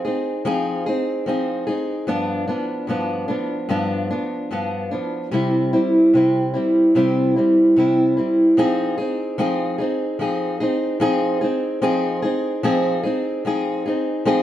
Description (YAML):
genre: indie pop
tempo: 74 BPM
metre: 4/4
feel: straight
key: F minor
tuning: A4 = 440 Hz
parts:
  - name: fingerpicked old ladder-braced acoustic guitar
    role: solo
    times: 0.0-14.4 s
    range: G2 to Ab4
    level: -18 LUFS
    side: equal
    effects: vibrato effect
room: wet studio reverb, RT60 0.7 s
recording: band playing live in one room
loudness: -18 LUFS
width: side -12 dB against mid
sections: 0.0-8.6 A section; 8.6-14.4 B section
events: none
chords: 0.0 Fm7; 2.1 G7; 5.3 C; 8.6 Fm7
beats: 0.46 1.28 | 2.09 2.90 3.71 4.52 | 5.33 6.14 6.96 7.77 | 8.58 9.39 10.20 11.01 | 11.82 12.64 13.45 14.26